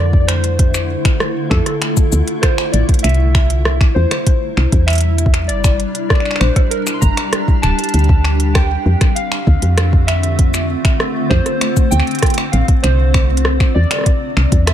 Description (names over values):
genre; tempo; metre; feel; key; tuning
IDM; 98 BPM; 4/4; straight; D minor; A4 = 440 Hz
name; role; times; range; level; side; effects
warbly lo-fi synth keys; melody; 0.0-14.7 s; A4 to C6; -22 LUFS; right 1 dB; chorus, ping-pong delay
granular cloud pad; sustained chords; 0.0-14.7 s; C3 to Bb4; -21 LUFS; left 1 dB; built-in reverb, vintage 12-bit sampler grit
woody FM bass; bass; 0.0-14.7 s; D1 to F2; -14 LUFS; equal; none
electronic kick drum; drums; 0.1-14.6 s; none; -13 LUFS; equal; none
organic electronic drum kit; drums; 0.3-14.7 s; cabasa, finger snaps, hi-hat, rim click; -20 LUFS; equal; none
room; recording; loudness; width
digital ambience; none; -12 LUFS; side -10 dB against mid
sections
0.0-14.7 A section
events
none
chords
0.0 Dm7; 3.0 C; 5.5 Gm; 7.9 Dm7; 12.8 C